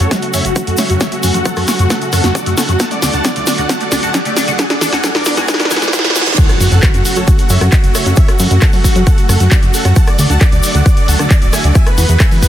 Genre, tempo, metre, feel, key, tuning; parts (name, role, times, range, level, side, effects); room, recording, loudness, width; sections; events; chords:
uplifting trance; 134 BPM; 4/4; straight; F# minor; A4 = 440 Hz
dense compressed supersaw; melody; 0.0-12.5 s; F#4 to A5; -19 LUFS; equal; sidechain pumping, low-pass filter, tape echo
lush unison pad; sustained chords; 0.0-12.5 s; C#3 to F#4; -21 LUFS; right 1 dB; chorus, sidechain pumping
liquid acid bass; arpeggios; 0.0-6.3 s; F#3 to F#4; -23 LUFS; left 3 dB; phaser, lush chorus, sidechain pumping, dub echo
plucky analog bass; bass; 0.0-12.4 s; D1 to F#2; -13 LUFS; equal; sidechain pumping
punchy analog drum machine; drums; 0.0-12.5 s; crash cymbal, handclaps, hi-hat, rim click, snare drum; -17 LUFS; equal
tube shaker; percussion; 0.0-12.5 s; -24 LUFS; left 3 dB
riser, reverse cymbal and impact; sound effects; 1.2-8.2 s; -23 LUFS; right 1 dB
electronic kick drum; drums; 0.1-12.5 s; -11 LUFS; equal; overdrive, high-pass filter on kick
light reverb; dense, heavily limited modern master, high-pass filter; -10 LUFS; side -11 dB against mid
0.0-6.4 A section; 6.4-12.5 B section
build-up 0.0-6.4; drum fill 0.0-6.4; filter sweep on acid bass 0.0-6.4; filter sweep 0.0-6.4; riser 1.2-6.4; reverse cymbal 5.5-6.4; drop 6.4-12.5; impact 6.4-8.2
0.0 F#m; 2.8 D; 4.6 Eadd9; 6.4 F#m; 10.0 D; 11.8 Eadd9